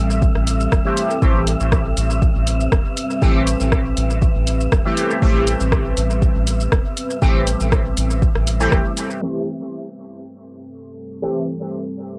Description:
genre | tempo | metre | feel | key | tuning
dub techno | 120 BPM | 4/4 | straight | A minor | A4 = 444 Hz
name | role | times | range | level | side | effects
deep dark ambient pad | sustained chords | 0.0-12.2 s | G3 to B4 | -29 LUFS | equal | chorus, built-in reverb, sidechain pumping, cassette tape
round analog bass | bass | 0.0-8.8 s | E1 to A1 | -23 LUFS | equal | sidechain pumping
wind-like tuned noise texture | texture | 0.0-9.2 s | E5 | -33 LUFS | equal | built-in reverb, sidechain pumping, cassette tape
deep house drum kit | drums | 0.1-9.3 s | crash cymbal, hi-hat, rim click, shaker | -27 LUFS | equal | overdrive, cassette tape, dub echo
electronic kick drum | drums | 0.2-8.8 s | none | -20 LUFS | equal | overdrive, cassette tape
resonant sweep polysynth | stabs | 0.9-11.4 s | E3 to G4 | -26 LUFS | equal | chorus, phaser, sidechain pumping, cassette tape, dub echo
room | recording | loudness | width
light reverb | home recording on cassette, low-pass filter | -18 LUFS | mono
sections
0.0-9.2 A section; 9.2-12.2 B section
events
band accent 8.7; filter sweep 9.2-12.2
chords
0.0 Am7

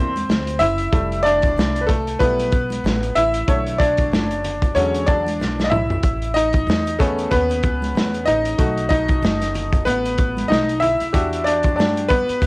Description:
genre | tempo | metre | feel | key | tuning
hip hop, jazz-hop | 94 BPM | 4/4 | swing 58% on 16ths | E minor | A4 = 441 Hz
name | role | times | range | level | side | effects
bright upright piano | accompaniment | 0.0-12.5 s | D3 to E5 | -19 LUFS | equal | none
upright bass | bass | 0.0-12.5 s | F1 to G2 | -26 LUFS | equal | none
crunchy breakbeat drum kit | drums | 0.2-12.5 s | hi-hat, kick drum, snare drum, toms | -21 LUFS | equal | cassette tape
congas and egg shaker | percussion | 0.2-12.5 s | none | -33 LUFS | right 2 dB | none
room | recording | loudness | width
light reverb, studio ambience | home recording on cassette | -16 LUFS | side -26 dB against mid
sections
0.0-12.5 A section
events
upright piano solo 0.0-12.5; drum fill 5.4-6.0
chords
0.0 Cadd9; 0.9 Fmaj9; 3.5 Bm9; 4.8 E13; 6.0 Amaj9; 8.6 B7; 11.1 Em9

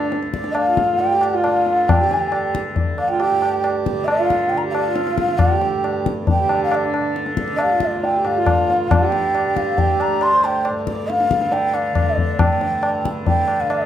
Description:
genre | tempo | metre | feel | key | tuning
indian classical, Hindustani | 137 BPM | 4/4 | straight | unclear | A4 = 439 Hz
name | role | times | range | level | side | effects
mellow bansuri | melody | 0.0-13.9 s | D5 to C6+21c | -19 LUFS | equal | none
hand-pumped harmonium | second line | 0.0-10.7 s | D4 to C5 | -24 LUFS | right 6 dB | none
tanpura | drone | 0.0-13.9 s | D2 to D3 | -27 LUFS | equal | none
tabla | percussion | 0.1-13.9 s | none | -21 LUFS | left 2 dB | none
room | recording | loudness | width
moderate recital hall reverb, RT60 1.3 s | none | -16 LUFS | side -10 dB against mid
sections
0.0-12.4 A section; 12.4-13.9 B section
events
none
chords
none

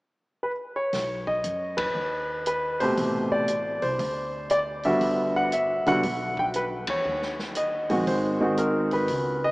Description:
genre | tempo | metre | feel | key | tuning
jazz piano trio | 118 BPM | 4/4 | swing 67% on 8ths | unclear | A4 = 436 Hz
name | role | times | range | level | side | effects
warm grand piano | melody | 0.4-9.5 s | B2 to G5 | -24 LUFS | equal | none
upright bass | bass | 0.9-9.5 s | F#1 to G#2 | -37 LUFS | equal | none
open jazz drum kit | drums | 0.9-9.2 s | hi-hat, kick drum, ride cymbal, snare drum | -37 LUFS | equal | none
room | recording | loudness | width
wet cathedral reverb, RT60 5.3 s | in a vast, echoing space, small speaker sound | -23 LUFS | side -22 dB against mid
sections
0.9-9.5 A section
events
band accent 1.7, 6.8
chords
0.0 N.C.; 0.9 B; 3.0 Am9; 4.0 D7(no3); 5.0 Gmaj7; 7.0 D#5; 8.1 G#7

